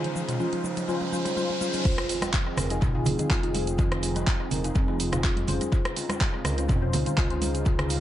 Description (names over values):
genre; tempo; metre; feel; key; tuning
afro house; 124 BPM; 4/4; swing 53% on 16ths; F minor; A4 = 440 Hz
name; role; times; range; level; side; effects
warm analog pad; sustained chords; 0.0-8.0 s; Db3 to Ab4; -36 LUFS; right 3 dB; chorus, sidechain pumping
marimba with soft mallets; arpeggios; 0.0-8.0 s; C4 to C5; -33 LUFS; equal; sidechain pumping, analog delay
deep mellow chord stab; stabs; 0.0-7.5 s; Db4 to C5; -34 LUFS; left 3 dB; chorus, sidechain pumping, analog delay
dark detuned saw bass; bass; 0.0-8.0 s; F1 to F2; -31 LUFS; equal; sidechain pumping, high-pass filter
house drum kit; drums; 0.0-8.0 s; crash cymbal, handclaps, hi-hat, rim click, toms; -31 LUFS; equal; analog delay
riser and impact; sound effects; 0.0-3.8 s; none; -36 LUFS; equal; none
darbuka; percussion; 0.1-7.8 s; none; -38 LUFS; left 2 dB; none
egg shaker; percussion; 0.2-8.0 s; none; -41 LUFS; left 2 dB; none
electronic kick drum; drums; 1.9-7.8 s; none; -25 LUFS; equal; none
congas; percussion; 2.2-7.5 s; none; -33 LUFS; right 3 dB; analog delay
room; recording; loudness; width
moderate spring reverb, RT60 1.6 s; echo-heavy mix, nothing above 10.8 kHz; -23 LUFS; side -12 dB against mid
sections
0.0-1.9 A section; 1.9-8.0 B section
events
build-up 0.0-1.9; drum fill 0.0-1.9; riser 0.0-1.9; drop 1.9-8.0; impact 1.9-3.8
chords
0.0 Dbmaj7; 1.9 Fm7; 5.7 Dbmaj7